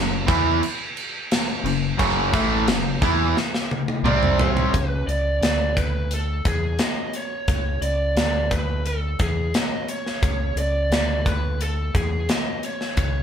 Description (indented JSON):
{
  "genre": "hard rock",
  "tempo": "87 BPM",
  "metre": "4/4",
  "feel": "straight",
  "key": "unclear",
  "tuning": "A4 = 440 Hz",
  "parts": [
    { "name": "distorted electric guitar", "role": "riff", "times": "0.0-4.7 s", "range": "F#2 to E4", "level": "-25 LUFS", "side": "left 6 dB", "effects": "distortion" },
    { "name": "overdriven semi-hollow guitar", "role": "riff", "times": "0.0-4.7 s", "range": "F#2 to E4", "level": "-24 LUFS", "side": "right 8 dB", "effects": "none" },
    { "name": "growling fingered electric bass", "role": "bass", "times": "0.0-13.2 s", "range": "F#1 to E2", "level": "-24 LUFS", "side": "equal", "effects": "overdrive" },
    { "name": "tight metal drum kit", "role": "drums", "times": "0.3-13.1 s", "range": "crash cymbal, hi-hat, kick drum, snare drum, toms", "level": "-24 LUFS", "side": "equal", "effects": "none" },
    { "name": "lead guitar through a small cranked amp", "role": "melody", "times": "4.1-13.2 s", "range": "G#4 to D#5", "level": "-26 LUFS", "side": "right 2 dB", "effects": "overdrive" }
  ],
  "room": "moderate studio reverb, RT60 0.7 s",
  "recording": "band playing live in one room",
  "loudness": "-20 LUFS",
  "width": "side -8 dB against mid",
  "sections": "0.0-4.7 A section; 4.7-13.2 B section",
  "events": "drum fill 3.4-4.7",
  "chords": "0.0 F#5; 4.0 C5; 4.7 N.C.; 5.4 Bm7/D; 6.4 C#m; 8.2 Bm7/D; 9.2 C#m; 10.9 Bm7/D; 11.9 C#m"
}